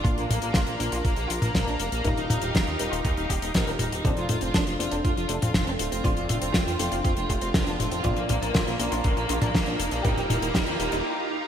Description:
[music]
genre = italo disco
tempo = 120 BPM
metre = 4/4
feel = straight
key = F mixolydian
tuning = A4 = 440 Hz
[part]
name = rich studio violin section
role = melody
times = 0.0-11.0 s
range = G3 to Bb4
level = -30 LUFS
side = equal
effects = ping-pong delay
[part]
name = lush unison pad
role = sustained chords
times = 0.0-11.5 s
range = D4 to C6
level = -33 LUFS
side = left 1 dB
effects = chorus, phaser
[part]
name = dark baby grand piano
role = stabs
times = 0.0-11.0 s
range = Bb2 to D5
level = -34 LUFS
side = left 1 dB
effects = none
[part]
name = chorused synth bass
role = bass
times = 0.0-11.0 s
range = D1 to F2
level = -32 LUFS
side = equal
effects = none
[part]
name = damped 70s drum kit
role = drums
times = 0.0-11.0 s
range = hi-hat, snare drum, toms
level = -28 LUFS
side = left 1 dB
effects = gated reverb
[part]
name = electronic kick drum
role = drums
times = 0.0-10.6 s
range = none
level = -26 LUFS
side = right 1 dB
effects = none
[part]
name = direct-recorded clean electric guitar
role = arpeggios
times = 4.0-11.0 s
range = D3 to D4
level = -36 LUFS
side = right 4 dB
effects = ping-pong delay
[part]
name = riser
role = sound effects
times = 6.5-11.0 s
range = none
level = -37 LUFS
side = equal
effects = none
[sound]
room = moderate lush hall reverb, RT60 1.9 s, studio ambience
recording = bright 1980s-style digital production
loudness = -23 LUFS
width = side -9 dB against mid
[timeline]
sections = 0.0-4.0 A section; 4.0-11.5 B section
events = filter sweep on analog synth pad 4.0-11.5; riser 6.5-11.0; break 11.0-11.5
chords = 0.0 Bb; 2.0 Ebadd9; 4.0 F6; 8.0 Bb; 10.0 Ebadd9

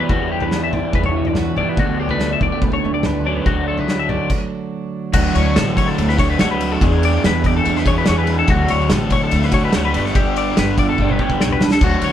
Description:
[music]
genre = math rock and midwest emo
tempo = 144 BPM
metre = 4/4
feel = straight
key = D major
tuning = A4 = 440 Hz
[part]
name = twelve-string electric guitar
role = accompaniment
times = 0.0-6.0 s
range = D2 to F#4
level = -25 LUFS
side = right 4 dB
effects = none
[part]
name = twelve-string electric guitar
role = arpeggios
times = 0.0-12.1 s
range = F#4 to E5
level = -22 LUFS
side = left 6 dB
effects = none
[part]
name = crunchy overdriven guitar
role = riff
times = 0.0-12.1 s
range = D3 to G#4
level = -20 LUFS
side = right 1 dB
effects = phaser
[part]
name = upright bass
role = bass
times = 0.0-12.1 s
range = G1 to E3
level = -22 LUFS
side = equal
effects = none
[part]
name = loose indie drum kit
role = drums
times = 0.1-12.1 s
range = crash cymbal, kick drum, ride cymbal, snare drum, toms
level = -20 LUFS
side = equal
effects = none
[sound]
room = light reverb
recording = band playing live in one room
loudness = -15 LUFS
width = side -10 dB against mid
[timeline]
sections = 0.0-5.2 A section; 5.2-12.1 B section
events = stop 4.3-5.2; drum fill 11.0-11.8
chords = 0.0 Em9; 1.8 Bm9/D; 3.5 D; 5.2 Dmaj7; 6.8 E7; 8.5 Dmaj7; 9.9 G

